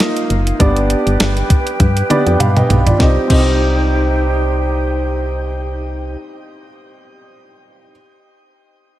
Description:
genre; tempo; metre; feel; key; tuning
1980s-style pop; 100 BPM; 4/4; swing 55% on 16ths; C minor; A4 = 440 Hz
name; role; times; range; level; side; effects
warm baby grand piano; accompaniment; 0.0-7.9 s; Bb3 to B5; -18 LUFS; right 1 dB; shimmer reverb
hollow small flute group; sustained chords; 0.0-6.2 s; Eb4 to G5; -22 LUFS; right 2 dB; shimmer reverb
clean 12-bit digital drum machine; drums; 0.0-3.5 s; crash cymbal, hi-hat, kick drum, snare drum, toms; -15 LUFS; equal; none
solid FM bass; bass; 0.3-6.2 s; F#1 to G2; -17 LUFS; equal; none
room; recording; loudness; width
light reverb, digital ambience; none; -12 LUFS; side -14 dB against mid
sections
0.0-3.0 A section; 3.0-5.4 B section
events
drum fill 1.8-3.0; grand piano fill 1.8-3.0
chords
0.0 Bbsus4; 0.6 G; 3.0 Cm

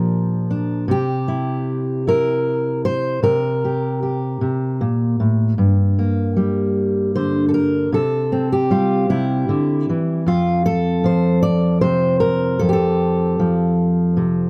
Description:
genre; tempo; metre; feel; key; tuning
folk, solo fingerstyle acoustic guitar; 51 BPM (dotted quarters); 6/8; straight; F major; A4 = 441 Hz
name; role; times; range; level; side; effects
fingerpicked steel-string acoustic guitar; solo; 0.0-14.5 s; F2 to D5; -19 LUFS; equal; none
room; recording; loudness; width
light reverb; dark, warm production; -19 LUFS; mono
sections
0.0-5.6 A section; 5.6-14.5 B section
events
none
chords
0.0 Bb6; 0.9 C7; 5.6 Gm; 7.9 C; 10.3 F

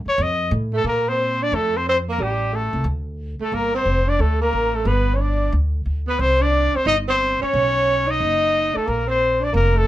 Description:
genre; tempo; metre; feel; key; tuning
jazz, small-group swing and bop; 179 BPM; 4/4; swing 64% on 8ths; Bb major; A4 = 440 Hz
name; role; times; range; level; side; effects
upright bass; bass; 0.0-9.9 s; F1 to Bb2; -22 LUFS; equal; none
breathy trumpet; melody; 0.1-9.9 s; G4 to Eb5; -20 LUFS; left 2 dB; none
breathy tenor saxophone; second line; 0.7-9.9 s; G3 to D#4; -23 LUFS; right 3 dB; none
room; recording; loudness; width
moderate club ambience, RT60 0.5 s; none; -18 LUFS; side -14 dB against mid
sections
0.8-9.9 A section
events
none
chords
0.2 F7; 0.8 Bbsus2; 2.2 Am7; 2.9 D5; 3.5 Gm9; 4.9 G5; 6.2 Csus2; 7.5 Badd9; 8.9 Bbsus2

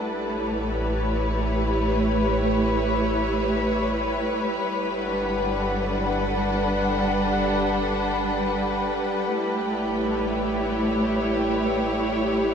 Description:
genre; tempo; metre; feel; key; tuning
ambient; free time; none; none; unclear; A4 = 440 Hz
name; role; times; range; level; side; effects
warm symphonic string section; sustained chords; 0.0-12.5 s; G3 to F#5; -22 LUFS; equal; none
round analog bass; bass; 0.0-12.5 s; G1 to A1; -31 LUFS; equal; none
pedal harmonium; drone; 0.0-12.5 s; G3 to G4; -33 LUFS; right 2 dB; none
room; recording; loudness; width
wet shimmer reverb, RT60 8.1 s; dark, warm production; -22 LUFS; side -7 dB against mid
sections
0.0-12.5 A section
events
fade-in on harmonium 0.0-12.5; fade-out on analog synth bass 0.0-12.5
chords
0.0 A7; 4.6 Gmaj7; 9.3 A7

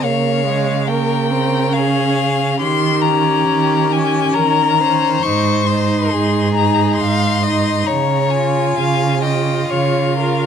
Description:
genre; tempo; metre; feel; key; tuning
classical, slow romantic movement for string quartet; 69 BPM; 3/4; uneven beats, rubato; Ab major; A4 = 440 Hz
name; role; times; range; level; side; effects
rich violin; melody; 0.0-10.5 s; F5 to Db6; -19 LUFS; left 10 dB; none
clear violin; second line; 0.0-10.5 s; G4 to F5; -21 LUFS; left 4 dB; none
warm viola; accompaniment; 0.0-10.5 s; Ab3 to F4; -21 LUFS; right 2 dB; none
rich cello; bass; 0.0-10.5 s; Ab2 to Eb3; -18 LUFS; right 6 dB; none
room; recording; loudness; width
moderate recital hall reverb, RT60 1.3 s; close, detailed microphones; -14 LUFS; side -8 dB against mid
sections
0.0-10.5 A section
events
none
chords
0.0 Bbm/Db; 2.6 Eb7; 5.2 Ab; 7.9 Db6

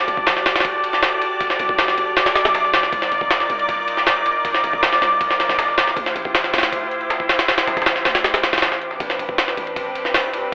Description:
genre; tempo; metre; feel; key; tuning
drum and bass, jungle; 158 BPM; 4/4; straight; A minor; A4 = 440 Hz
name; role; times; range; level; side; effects
warm chamber string section; sustained chords; 0.0-10.5 s; C4 to D5; -23 LUFS; equal; none
warm 808-style bass; bass; 0.0-10.4 s; E1 to F2; -36 LUFS; equal; tube saturation
backwards swelling texture; texture; 0.0-9.0 s; D6; -22 LUFS; equal; built-in reverb
breakbeat sampler-style drum kit; drums; 0.1-9.0 s; hi-hat, snare drum; -27 LUFS; equal; none
jungle sampler-style drum kit; drums; 0.1-10.4 s; hi-hat, kick drum, ride cymbal, snare drum; -18 LUFS; equal; none
room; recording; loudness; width
wet plate reverb, RT60 1.5 s; telephone sound; -16 LUFS; side -26 dB against mid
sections
0.0-9.0 A section; 9.0-10.5 A section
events
drop 0.0-9.0, 9.0-10.5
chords
0.0 Em11; 2.9 Cm11; 6.0 Dm11; 9.0 Am11

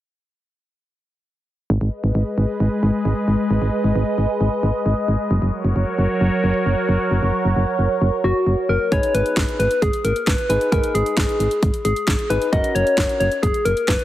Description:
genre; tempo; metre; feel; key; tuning
synth-pop; 133 BPM; 4/4; straight; G# minor; A4 = 440 Hz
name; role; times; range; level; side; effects
phased analog pad; sustained chords; 2.0-8.9 s; F#3 to D#5; -21 LUFS; equal; phaser, chorus
solid FM bass; bass; 1.7-14.0 s; F#1 to G#1; -19 LUFS; equal; none
soft struck synth lead; melody; 8.2-14.0 s; F#4 to D#5; -20 LUFS; left 2 dB; chorus
soft electric-piano-like synth keys; accompaniment; 8.9-13.3 s; C#4 to B4; -27 LUFS; left 2 dB; chorus
house drum kit; drums; 8.9-14.0 s; hi-hat, kick drum, snare drum; -22 LUFS; equal; overdrive
room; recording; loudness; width
moderate concert hall reverb, RT60 1.9 s; heavily compressed radio sound, multiband compression; -17 LUFS; side -14 dB against mid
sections
1.7-8.9 A section; 8.9-14.0 B section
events
none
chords
1.7 G#m; 5.3 F#; 8.9 G#m; 12.5 F#

